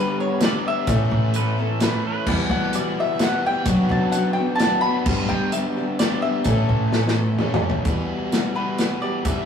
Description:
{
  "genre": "folk rock and heartland rock",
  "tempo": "129 BPM",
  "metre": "3/4",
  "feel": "straight",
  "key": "E dorian",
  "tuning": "A4 = 441 Hz",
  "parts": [
    { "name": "mandolin", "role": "melody", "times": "0.0-9.5 s", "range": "B4 to B5", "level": "-26 LUFS", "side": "left 2 dB", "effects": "analog delay" },
    { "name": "picked steel-string acoustic guitar", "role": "accompaniment", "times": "0.0-9.5 s", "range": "E2 to A4", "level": "-26 LUFS", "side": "left 2 dB", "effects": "none" },
    { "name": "overdriven electric guitar", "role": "riff", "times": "0.0-9.5 s", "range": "E2 to A4", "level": "-26 LUFS", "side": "equal", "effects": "none" },
    { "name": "natural country drum kit", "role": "drums", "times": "0.4-9.4 s", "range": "crash cymbal, hi-hat, kick drum, snare drum, toms", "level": "-24 LUFS", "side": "equal", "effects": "none" },
    { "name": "upright bass", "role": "bass", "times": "0.9-9.5 s", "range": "E2 to G3", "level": "-23 LUFS", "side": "right 1 dB", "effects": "none" },
    { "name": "pedal steel guitar", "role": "second line", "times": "1.4-2.4 s", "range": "A4 to B4", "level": "-29 LUFS", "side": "right 4 dB", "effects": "none" }
  ],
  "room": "moderate stone room reverb, RT60 1.0 s",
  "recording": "rough rehearsal-room recording, tube saturation, small room reverb",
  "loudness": "-19 LUFS",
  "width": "side -7 dB against mid",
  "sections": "0.0-7.9 A section; 7.9-9.5 B section",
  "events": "drum fill 6.9-7.9; mandolin solo 7.9-9.5",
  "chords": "0.0 G; 0.9 A; 2.3 Emadd9; 3.7 Bm/F#; 5.1 G; 6.5 A; 7.9 Em"
}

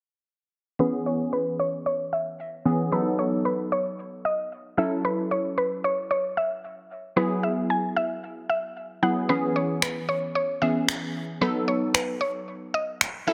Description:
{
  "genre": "dance-pop",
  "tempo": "113 BPM",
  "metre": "4/4",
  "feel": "straight",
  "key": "C# minor",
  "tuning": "A4 = 440 Hz",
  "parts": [
    { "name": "mallet-like synth pluck", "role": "melody", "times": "0.8-13.3 s", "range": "B4 to G#5", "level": "-29 LUFS", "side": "equal", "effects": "chorus, low-pass filter, dub echo" },
    { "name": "glassy wavetable pluck", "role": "accompaniment", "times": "0.8-13.3 s", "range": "E3 to A4", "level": "-29 LUFS", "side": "equal", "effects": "chorus, low-pass filter" },
    { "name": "electronic finger snaps", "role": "drums", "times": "9.8-13.1 s", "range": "none", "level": "-28 LUFS", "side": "equal", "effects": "soft clipping on snare" }
  ],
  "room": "moderate plate reverb, RT60 1.5 s, digital ambience",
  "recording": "dense, heavily limited modern master",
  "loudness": "-26 LUFS",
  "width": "mono",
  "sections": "0.8-13.3 A section",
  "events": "filter sweep 0.8-13.3",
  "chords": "0.8 C#m7; 2.9 B7; 4.8 F#m7; 7.2 Eadd9; 9.3 C#m7; 11.4 B7"
}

